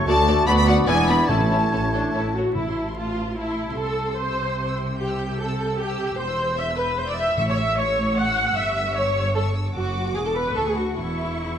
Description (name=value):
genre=quick classical-period movement for symphony orchestra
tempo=149 BPM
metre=3/4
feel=rubato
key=A minor, A major from 7.4 s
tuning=A4 = 440 Hz
part: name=warm clarinet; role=second line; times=0.0-2.3 s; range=E4 to F#4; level=-30 LUFS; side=right 2 dB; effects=none
part: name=warm oboe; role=second line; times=0.0-2.3 s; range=C#5 to D5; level=-30 LUFS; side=equal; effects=none
part: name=warm bassoon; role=accompaniment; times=0.0-2.3 s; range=A3 to B3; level=-29 LUFS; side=right 1 dB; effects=none
part: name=rich studio cello section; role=bass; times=0.0-11.6 s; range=D2 to C3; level=-28 LUFS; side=right 1 dB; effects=none
part: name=warm studio double bass section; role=bass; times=0.0-11.6 s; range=E1 to D2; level=-29 LUFS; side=right 1 dB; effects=none
part: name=warm studio violin section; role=melody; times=0.1-11.6 s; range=F#5 to G6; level=-30 LUFS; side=left 4 dB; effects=none
part: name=silver concert flute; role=second line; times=0.1-2.3 s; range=F#5 to B5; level=-25 LUFS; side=left 1 dB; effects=none
part: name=warm studio violin section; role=second line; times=0.1-11.6 s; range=E4 to F#5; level=-30 LUFS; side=left 2 dB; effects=none
part: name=warm studio viola section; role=accompaniment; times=0.1-11.6 s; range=A3 to F#5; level=-25 LUFS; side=equal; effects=none
part: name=mellow French horn section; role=sustained chords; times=0.1-2.4 s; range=A3 to F#4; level=-27 LUFS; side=left 3 dB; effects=none
part: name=timpani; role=percussion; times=1.3-3.1, 7.4-7.9 s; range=A2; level=-30 LUFS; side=equal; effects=none
room=wet scoring stage reverb, RT60 1.8 s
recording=vinyl crackle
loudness=-20 LUFS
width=side -9 dB against mid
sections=0.0-2.6 A section; 2.6-11.6 B section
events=none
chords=0.1 D; 0.5 Bm/D; 0.9 E7; 1.3 A; 2.6 Am; 3.8 Am/C; 5.0 C; 6.2 C/E; 7.4 A; 8.6 A7/G (rootless); 9.7 D/F#; 10.6 Dmaj7; 11.0 C#m/E